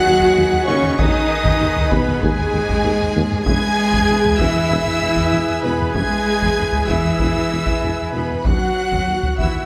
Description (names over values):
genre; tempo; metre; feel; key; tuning
cinematic, epic orchestral film score; 97 BPM; 4/4; straight; unclear; A4 = 441 Hz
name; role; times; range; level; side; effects
warm symphonic violin section; melody; 0.0-9.7 s; G#5 to G#6; -28 LUFS; equal; none
silver concert flute; second line; 0.0-9.7 s; G#4 to G#5; -29 LUFS; equal; none
warm symphonic violin section; second line; 0.0-9.7 s; G#4 to G#5; -29 LUFS; equal; none
rich studio viola section; accompaniment; 0.0-9.7 s; G#3 to G#4; -28 LUFS; equal; none
clear woodwind section; sustained chords; 0.0-9.7 s; D#4 to G#5; -28 LUFS; equal; none
mellow French horn section; sustained chords; 0.0-9.7 s; G#3 to G#4; -26 LUFS; equal; none
rich symphonic cello section; bass; 0.0-9.7 s; G#2 to G#3; -26 LUFS; equal; none
dark symphonic double bass section; bass; 0.1-9.6 s; D#2 to E2; -28 LUFS; equal; none
mellow tuba; bass; 0.1-9.4 s; E1 to D#2; -29 LUFS; equal; none
taiko ensemble; drums; 0.2-9.7 s; none; -25 LUFS; equal; none
room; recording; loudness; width
wet scoring stage reverb, RT60 1.6 s; none; -18 LUFS; mono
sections
0.0-9.7 A section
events
none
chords
0.0 G#m/D#; 3.5 E; 8.4 D#m